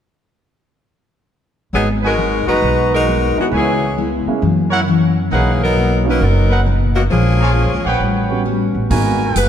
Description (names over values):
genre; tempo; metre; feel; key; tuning
jazz, big band swing; 134 BPM; 4/4; swing 65% on 8ths; G# minor; A4 = 441 Hz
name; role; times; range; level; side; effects
bright saxophone section; melody; 1.7-9.5 s; D#3 to B4; -18 LUFS; left 1 dB; none
picked steel-string acoustic guitar; accompaniment; 1.7-9.5 s; F#2 to A#4; -20 LUFS; left 4 dB; none
upright bass; bass; 1.7-9.5 s; F#1 to F#2; -17 LUFS; right 1 dB; none
clear trumpet section; stabs; 2.0-9.5 s; D#4 to A#5; -22 LUFS; right 1 dB; none
clear grand piano; accompaniment; 3.4-9.2 s; F#3 to F#4; -23 LUFS; right 4 dB; none
swinging big-band drum kit; drums; 8.9-9.5 s; hi-hat, kick drum; -22 LUFS; right 1 dB; none
room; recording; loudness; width
moderate concert hall reverb, RT60 2.5 s; dark, warm production; -13 LUFS; side -9 dB against mid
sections
1.7-8.9 A section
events
none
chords
1.7 G#m7; 3.5 C#m7; 4.4 F#7; 5.3 Bmaj7; 7.1 A#m7; 8.0 A13; 8.9 G#m9